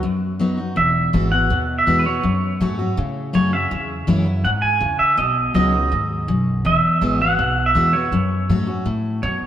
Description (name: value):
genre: honky-tonk and classic country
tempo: 163 BPM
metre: 4/4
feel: straight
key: E major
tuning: A4 = 442 Hz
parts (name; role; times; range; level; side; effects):
- clean electric guitar; melody; 0.0-9.5 s; B4 to G#5; -19 LUFS; right 2 dB; spring reverb
- picked steel-string acoustic guitar; accompaniment; 0.0-9.5 s; E2 to F#4; -21 LUFS; left 2 dB; none
- upright bass; bass; 0.0-9.4 s; E1 to A2; -24 LUFS; right 1 dB; none
room: wet plate reverb, RT60 2.9 s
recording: heard from further back in the room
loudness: -16 LUFS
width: side -10 dB against mid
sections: 0.8-9.5 A section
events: break 0.0-0.8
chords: 0.0 B; 0.8 Eadd9; 2.2 F#m; 3.7 C#m; 5.2 B; 6.7 Eadd9; 8.1 F#m